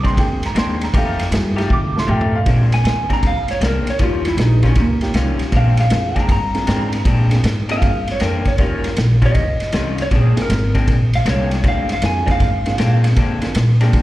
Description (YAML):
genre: electric blues shuffle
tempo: 157 BPM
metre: 4/4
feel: swing 66% on 8ths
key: Bb mixolydian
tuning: A4 = 441 Hz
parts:
  - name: dark upright piano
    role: accompaniment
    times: 0.0-14.0 s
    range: A3 to D6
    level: -26 LUFS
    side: right 3 dB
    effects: slapback echo
  - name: electric guitar through a small old amp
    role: riff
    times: 0.0-14.0 s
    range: Bb2 to G4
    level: -24 LUFS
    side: left 4 dB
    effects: wide subtle chorus, slapback echo
  - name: upright bass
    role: bass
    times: 0.0-14.0 s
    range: Ab1 to D3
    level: -18 LUFS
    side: equal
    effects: none
  - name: vintage drum kit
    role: drums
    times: 0.0-14.0 s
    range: kick drum, ride cymbal, snare drum, toms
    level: -19 LUFS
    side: equal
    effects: none
  - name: electric slide guitar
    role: melody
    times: 2.7-13.0 s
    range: Bb3 to Bb5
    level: -22 LUFS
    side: equal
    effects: slapback echo
room: light reverb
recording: live gig heard through the venue's PA, recital hall reverb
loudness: -14 LUFS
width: side -16 dB against mid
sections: 0.0-2.5 A section; 2.5-14.0 A section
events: drum fill 1.7-2.5; electric slide guitar solo 2.5-14.0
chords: 0.0 Bb9; 0.9 F9; 2.5 Bb9; 4.0 Eb9; 5.5 Bb9; 8.6 Eb9; 10.1 Bb9